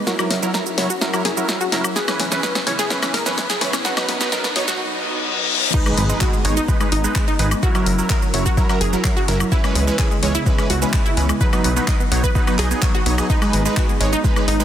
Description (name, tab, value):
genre	progressive house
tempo	127 BPM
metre	4/4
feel	straight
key	G# minor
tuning	A4 = 440 Hz
part	airy breathy pad	sustained chords	0.0-14.6 s	C#3 to A#4	-28 LUFS	equal	chorus, vintage 12-bit sampler grit, sidechain pumping
part	wide unison pluck	arpeggios	0.0-14.6 s	F#3 to D#5	-24 LUFS	equal	sidechain pumping, tape echo
part	riser, reverse cymbal and impact	sound effects	2.5-7.6 s	none	-26 LUFS	left 4 dB	none
part	supersaw stab	stabs	0.1-14.6 s	E3 to D#5	-24 LUFS	right 2 dB	phaser, sidechain pumping, low-pass filter, tape echo
part	deep house drum kit	drums	0.1-14.6 s	crash cymbal, handclaps, hi-hat, shaker, snare drum, woodblock	-24 LUFS	left 1 dB	overdrive, soft clipping on snare
part	electronic kick drum	drums	0.1-14.3 s	none	-19 LUFS	equal	overdrive, high-pass filter on kick, high-pass filter on room
part	plucky analog bass	bass	0.3-14.6 s	F#1 to C#2	-22 LUFS	equal	sidechain pumping
room	light reverb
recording	dense, heavily limited modern master, high-pass filter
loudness	-16 LUFS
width	side -10 dB against mid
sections	0.0-5.7 A section; 5.7-14.6 B section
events	build-up 0.0-5.7; drum fill 0.0-4.8; filter sweep on synth pluck 0.0-5.7; filter sweep on supersaw synth 0.0-5.7; filter sweep 0.0-5.7; reverse cymbal 4.8-5.7; drop 5.7-14.6; impact 5.7-7.6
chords	0.1 F#7; 2.0 C#m7; 3.8 B; 5.7 G#m; 7.6 F#7; 9.5 C#m7; 11.4 B; 13.3 G#m